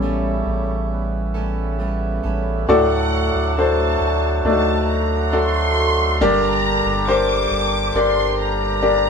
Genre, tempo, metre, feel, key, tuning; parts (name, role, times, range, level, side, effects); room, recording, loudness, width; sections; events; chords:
pop; 68 BPM; 4/4; straight; A4 = 443 Hz
warm concert grand piano; accompaniment; 0.0-9.1 s; G2 to D5; -19 LUFS; left 2 dB
hand-pumped harmonium; sustained chords; 0.0-9.1 s; C#3 to G4; -25 LUFS; right 3 dB
fingerpicked steel-string acoustic guitar; arpeggios; 0.0-2.7 s; G3 to A4; -30 LUFS; equal; ping-pong delay
saturated sub bass; bass; 0.0-9.1 s; G1 to D2; -23 LUFS; equal
warm studio violin section; second line; 2.7-9.1 s; F#5 to D6; -24 LUFS; equal
moderate stone room reverb, RT60 1.1 s; band playing live in one room; -16 LUFS; side -6 dB against mid
0.0-2.7 A section; 2.7-9.1 B section
grand piano solo 0.0-2.7
0.0 A7; 2.7 D; 6.2 Gm